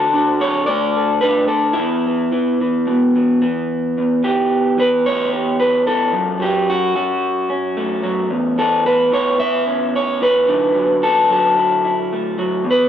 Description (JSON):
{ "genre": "folk, solo fingerstyle acoustic guitar", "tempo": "111 BPM", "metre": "4/4", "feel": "straight", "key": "E dorian", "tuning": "A4 = 440 Hz", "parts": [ { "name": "electric guitar through a small old amp", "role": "solo", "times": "0.0-12.9 s", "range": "E2 to E5", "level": "-14 LUFS", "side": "equal", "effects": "spring reverb" } ], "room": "light reverb", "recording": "worn, warbling old tape, cassette tape, warbly pitch drift", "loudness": "-15 LUFS", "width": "side -9 dB against mid", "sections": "0.0-4.0 A section; 4.0-12.9 A section", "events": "none", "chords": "0.0 D; 1.8 E5; 4.0 Em; 6.2 F#m; 8.3 A/E; 10.5 Dadd9", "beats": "0.16 0.70 1.24 | 1.79 2.33 2.88 3.43 | 3.98 4.53 5.07 5.61 | 6.15 6.69 7.23 7.77 | 8.31 8.85 9.40 9.94 | 10.48 11.03 11.57 12.12 | 12.66" }